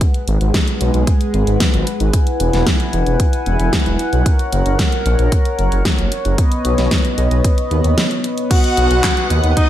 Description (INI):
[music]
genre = synthwave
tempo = 113 BPM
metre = 4/4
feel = straight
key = B major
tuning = A4 = 440 Hz
[part]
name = chorused pulse-width pad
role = sustained chords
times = 0.0-9.7 s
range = G#3 to G#5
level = -20 LUFS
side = left 1 dB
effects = sidechain pumping
[part]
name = electronic kick drum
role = drums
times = 0.0-9.7 s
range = none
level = -16 LUFS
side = equal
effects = small room ambience
[part]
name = pop drum kit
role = drums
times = 0.0-9.7 s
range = crash cymbal, handclaps, hi-hat, snare drum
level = -21 LUFS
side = equal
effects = small room ambience, gated reverb
[part]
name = wide detuned saw bass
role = bass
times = 0.3-9.5 s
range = E1 to D#2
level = -16 LUFS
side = equal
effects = chorus
[part]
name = breathy alto saxophone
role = melody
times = 8.5-9.7 s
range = D#4 to F#4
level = -18 LUFS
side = equal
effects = none
[part]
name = string machine, violins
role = second line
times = 8.5-9.7 s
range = D#5 to F#5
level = -23 LUFS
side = left 1 dB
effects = ensemble chorus
[sound]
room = little or no reverb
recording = none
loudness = -13 LUFS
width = side -12 dB against mid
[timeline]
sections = 0.0-8.5 A section; 8.5-9.7 B section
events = break 8.0-8.5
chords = 0.0 G#m7; 2.1 Eadd9; 4.3 F#; 6.4 Badd9; 8.5 B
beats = | 0.01 0.54 1.07 1.60 | 2.14 2.67 3.20 3.73 | 4.26 4.79 5.32 5.85 | 6.38 6.91 7.45 7.98 | 8.51 9.04 9.57